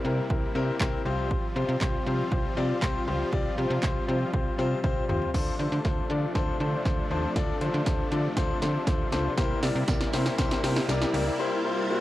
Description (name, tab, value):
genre	dance-pop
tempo	119 BPM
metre	4/4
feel	straight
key	D minor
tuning	A4 = 440 Hz
part	clear grand piano	accompaniment	0.0-12.0 s	C4 to D5	-30 LUFS	left 5 dB	sidechain pumping, cassette tape
part	supersaw chords	sustained chords	0.0-12.0 s	C3 to F4	-33 LUFS	right 2 dB	sidechain pumping, cassette tape
part	slap-like FM bass	bass	0.0-11.3 s	C2 to D3	-30 LUFS	right 1 dB	sidechain pumping
part	house drum kit	drums	0.3-11.3 s	crash cymbal, handclaps, hi-hat, kick drum, snare drum, toms	-29 LUFS	right 1 dB	none
part	riser	sound effects	8.1-12.0 s	none	-37 LUFS	equal	none
part	tambourine	percussion	9.4-11.3 s	none	-47 LUFS	right 9 dB	none
room	light reverb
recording	home recording on cassette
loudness	-24 LUFS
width	side -15 dB against mid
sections	0.0-5.3 A section; 5.3-12.0 B section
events	drum fill 4.8-5.3, 5.3-11.4; build-up 5.3-12.0; riser 8.1-12.0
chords	0.0 C7; 1.1 Fsus2/C; 5.3 Dm7; 9.4 C7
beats	0.30 0.81 | 1.31 1.81 2.32 2.82 | 3.33 3.83 4.33 4.84 | 5.34 5.85 6.35 6.86 | 7.36 7.86 8.37 8.87 | 9.38 9.88 10.38 10.89 | 11.39 11.90